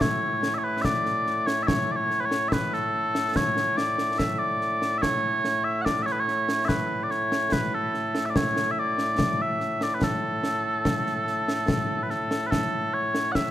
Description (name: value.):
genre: scottish traditional, Scottish pipe music.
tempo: 72 BPM.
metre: 3/4.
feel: straight.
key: A major.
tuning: A4 = 442 Hz.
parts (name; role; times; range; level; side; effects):
mellow small bagpipes; melody; 0.0-13.5 s; A2 to F#5; -24 LUFS; equal; none.
concert snare drum and concert bass drum; drums; 0.0-13.5 s; none; -28 LUFS; equal; none.
room: light reverb.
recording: none.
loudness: -23 LUFS.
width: side -12 dB against mid.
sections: 0.0-12.5 A section.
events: none.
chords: none.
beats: | 0.01 0.85 1.68 | 2.52 3.35 4.18 | 5.01 5.85 6.68 | 7.51 8.35 9.18 | 10.02 10.85 11.68 | 12.52 13.35.